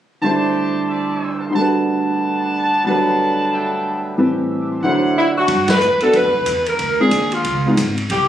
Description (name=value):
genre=jazz, big band swing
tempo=182 BPM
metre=4/4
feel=swing 62% on 8ths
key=G major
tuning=A4 = 441 Hz
part: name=clear grand piano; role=accompaniment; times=0.2-7.8 s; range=D2 to A5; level=-18 LUFS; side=right 1 dB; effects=none
part: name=clear trumpet section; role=stabs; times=0.2-5.5 s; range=D4 to E6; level=-20 LUFS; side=equal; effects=none
part: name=warm saxophone section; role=melody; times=5.2-8.3 s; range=E4 to B4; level=-16 LUFS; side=equal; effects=none
part: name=upright bass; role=bass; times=5.5-8.3 s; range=G#1 to G2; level=-23 LUFS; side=right 1 dB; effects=none
part: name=swinging big-band drum kit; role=drums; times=5.5-8.2 s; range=hi-hat, kick drum, ride cymbal, snare drum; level=-24 LUFS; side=equal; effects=none
room=moderate large studio reverb, RT60 1.4 s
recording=recorded on a phone in the room, club reverb, compression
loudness=-15 LUFS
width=side -10 dB against mid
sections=0.2-5.5 A section; 5.5-8.3 B section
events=band accent 5.7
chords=0.2 D7sus4; 1.5 Gmaj9/D; 4.2 Am7; 4.8 D9; 5.5 Gmaj7; 6.8 Dm7b5; 7.5 C#9